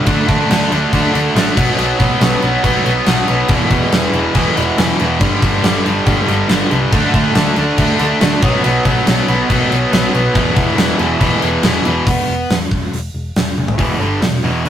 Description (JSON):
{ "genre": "hard rock", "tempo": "140 BPM", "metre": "4/4", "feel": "straight", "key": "E minor", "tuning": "A4 = 440 Hz", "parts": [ { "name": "biting overdriven guitar", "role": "riff", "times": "0.0-12.6 s", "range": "E2 to D4", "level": "-22 LUFS", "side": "equal", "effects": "none" }, { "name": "cranked stack guitar", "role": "riff", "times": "0.0-14.7 s", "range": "E2 to D4", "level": "-17 LUFS", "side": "right 2 dB", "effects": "overdrive" }, { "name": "heavy high-gain guitar", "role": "riff", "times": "0.0-14.7 s", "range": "E2 to D4", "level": "-21 LUFS", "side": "left 5 dB", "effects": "distortion" }, { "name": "hollow-body short-scale picked electric bass", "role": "bass", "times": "0.1-14.7 s", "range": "E1 to E2", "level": "-21 LUFS", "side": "equal", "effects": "none" }, { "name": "gated 80s drum kit", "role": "drums", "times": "0.1-14.7 s", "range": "crash cymbal, hi-hat, kick drum, snare drum, toms", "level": "-16 LUFS", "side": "equal", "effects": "none" } ], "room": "moderate booth ambience, RT60 0.2 s", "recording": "rough rehearsal-room recording", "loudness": "-12 LUFS", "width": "side -10 dB against mid", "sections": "0.0-12.1 A section; 12.1-13.8 B section", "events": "drum fill 13.6", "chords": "0.1 D5; 1.6 B5; 3.5 E5; 5.2 G5; 6.9 D5; 8.4 B5; 10.3 E5; 12.1 N.C.; 13.8 Em" }